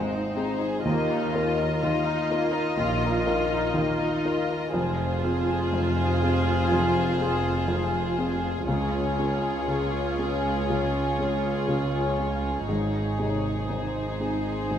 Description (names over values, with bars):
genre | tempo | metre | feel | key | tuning
cinematic, emotional film score for orchestra | 61 BPM | 4/4 | rubato | Ab major | A4 = 440 Hz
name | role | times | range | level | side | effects
warm studio violin section | melody | 0.0-14.8 s | C5 to Eb5 | -32 LUFS | left 5 dB | none
warm symphonic violin section | second line | 0.0-14.8 s | Ab3 to Bb4 | -31 LUFS | left 2 dB | none
felt-muted upright piano | accompaniment | 0.0-14.8 s | F1 to Bb4 | -28 LUFS | left 1 dB | none
warm chamber viola section | accompaniment | 0.0-14.8 s | Eb4 to F4 | -31 LUFS | right 2 dB | none
rich studio cello section | bass | 0.8-14.8 s | Db2 to Bb2 | -31 LUFS | right 2 dB | none
rich studio double bass section | bass | 0.8-14.8 s | F1 to Eb2 | -33 LUFS | right 3 dB | none
room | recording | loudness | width
moderate concert hall reverb, RT60 2.1 s | none | -23 LUFS | side -9 dB against mid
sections
0.0-14.8 A section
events
none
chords
0.0 Ab; 0.8 Ebsus2; 4.7 Fm; 8.7 Db; 12.7 Ab